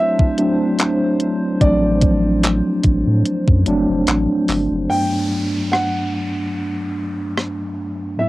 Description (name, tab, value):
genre	contemporary R&B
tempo	73 BPM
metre	4/4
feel	swing 54% on 16ths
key	unclear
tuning	A4 = 440 Hz
part	warm grand piano	melody	0.0-8.3 s	D5 to G5	-22 LUFS	right 1 dB	cassette tape, tape echo
part	mellow tine electric piano	accompaniment	0.0-8.3 s	G2 to E4	-18 LUFS	equal	medium stereo tremolo, cassette tape
part	hollow soft pad	sustained chords	0.0-4.9 s	F#3 to C5	-27 LUFS	equal	chorus, sidechain pumping, cassette tape
part	clean 12-bit digital drum machine	drums	0.2-7.6 s	handclaps, hi-hat, kick drum, rim click	-16 LUFS	equal	overdrive, cassette tape
part	warm sub bass	bass	1.6-4.9 s	F#1 to A2	-20 LUFS	equal	none
part	downlifter	sound effects	4.9-8.3 s	none	-33 LUFS	equal	none
room	moderate booth ambience, RT60 0.2 s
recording	home recording on cassette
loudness	-16 LUFS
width	side -18 dB against mid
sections	0.0-4.9 A section; 4.9-8.3 B section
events	none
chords	0.0 D7; 4.9 Gmaj7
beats	0.79 | 1.61 2.43 3.26 4.08 | 4.90 5.72 6.54 7.37 | 8.19